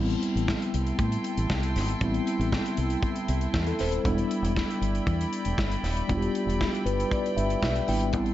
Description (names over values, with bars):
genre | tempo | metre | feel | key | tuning
disco | 118 BPM | 4/4 | straight | unclear | A4 = 440 Hz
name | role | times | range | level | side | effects
mellow tine electric piano | accompaniment | 0.0-8.3 s | G3 to G5 | -28 LUFS | left 2 dB | medium stereo tremolo
rich studio string section | sustained chords | 0.0-8.3 s | E4 to C6 | -34 LUFS | right 1 dB | none
fingered electric bass | bass | 0.0-8.3 s | D#1 to A2 | -28 LUFS | equal | none
modern studio drum kit | drums | 0.1-8.3 s | hi-hat, kick drum, snare drum | -31 LUFS | equal | none
room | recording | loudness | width
light reverb, small room reverb | dark, warm production, nothing above 7.7 kHz | -24 LUFS | side -13 dB against mid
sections
0.0-8.3 A section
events
tine electric piano fill 6.6-8.1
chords
0.0 Am7; 4.1 Em7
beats
0.48 0.99 1.50 | 2.01 2.52 3.03 3.54 | 4.05 4.56 5.07 5.58 | 6.09 6.61 7.12 7.63 | 8.14